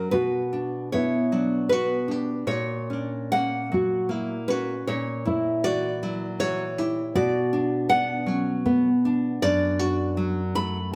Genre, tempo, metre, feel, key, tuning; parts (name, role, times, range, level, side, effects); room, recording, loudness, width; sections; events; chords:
romantic duo for nylon-string guitar and classical guitar; 78 BPM; 3/4; rubato; B minor; A4 = 440 Hz
nylon-string guitar; accompaniment; 0.0-11.0 s; F#2 to B5; -27 LUFS; equal
nylon-string guitar; melody; 0.1-10.9 s; B3 to G4; -29 LUFS; equal
moderate recital hall reverb, RT60 1.5 s; close, detailed microphones; -25 LUFS; mono
0.1-11.0 A section
0.1 Bm; 2.5 F#/A#; 4.9 F#7/A#; 7.2 Bm; 9.4 D/F#